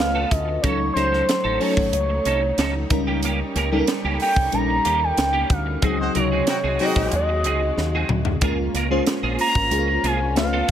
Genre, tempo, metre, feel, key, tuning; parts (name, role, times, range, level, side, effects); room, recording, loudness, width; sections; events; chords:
polished 1980s jazz-funk pop; 92 BPM; 4/4; straight; Db major; A4 = 444 Hz
expressive portamento lead; melody; 0.0-10.7 s; C5 to Bb5; -23 LUFS; equal; chorus
bell-like FM electric piano; accompaniment; 0.0-10.7 s; C3 to C5; -26 LUFS; left 2 dB; wide subtle chorus
warm studio string section; sustained chords; 0.0-10.7 s; C3 to A4; -32 LUFS; equal
clean electric guitar; riff; 0.0-10.7 s; Bb3 to C5; -28 LUFS; right 4 dB; ensemble chorus
fingered electric bass with an envelope filter; bass; 0.0-10.7 s; Ab1 to Eb2; -25 LUFS; equal
crisp fusion drum kit; drums; 0.0-10.7 s; hi-hat, kick drum, snare drum, toms; -24 LUFS; right 1 dB
warm horn section; second line; 6.0-7.2 s; Eb3 to C5; -29 LUFS; left 1 dB
light reverb, small room ambience; -18 LUFS; side -10 dB against mid
0.0-10.7 A section
band accent 5.8-8.4; drum fill 7.8-8.4
0.0 Db7b13; 0.6 Gbm6; 2.9 Eb7/Db; 5.8 Ab7; 8.4 Db6